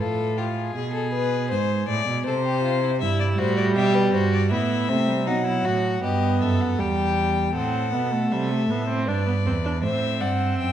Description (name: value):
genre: classical, baroque-style fugue for string quartet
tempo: 79 BPM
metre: 3/4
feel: straight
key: A minor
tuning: A4 = 440 Hz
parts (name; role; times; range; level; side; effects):
- rich violin; melody; 0.0-10.7 s; F4 to G5; -27 LUFS; left 6 dB; none
- rich violin; second line; 0.0-10.7 s; C4 to E5; -29 LUFS; left 3 dB; none
- rich cello; bass; 0.0-10.7 s; E2 to C3; -25 LUFS; right 3 dB; none
- warm viola; accompaniment; 3.0-10.7 s; F#3 to D4; -24 LUFS; right 2 dB; none
room: wet recital hall reverb, RT60 1.5 s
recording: dark, warm production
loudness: -20 LUFS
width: side -10 dB against mid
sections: 0.0-7.6 A section; 7.6-10.7 B section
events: none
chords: 0.0 F/A; 0.8 G#dim; 2.3 N.C.; 3.0 Em/G; 4.5 Am; 5.3 B7; 6.8 Em; 7.6 Am; 9.1 G; 9.8 F#dim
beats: 0.00 | 0.76 1.51 2.27 | 3.02 3.76 4.52 | 5.28 6.04 6.80 | 7.56 8.32 9.07 | 9.83 10.59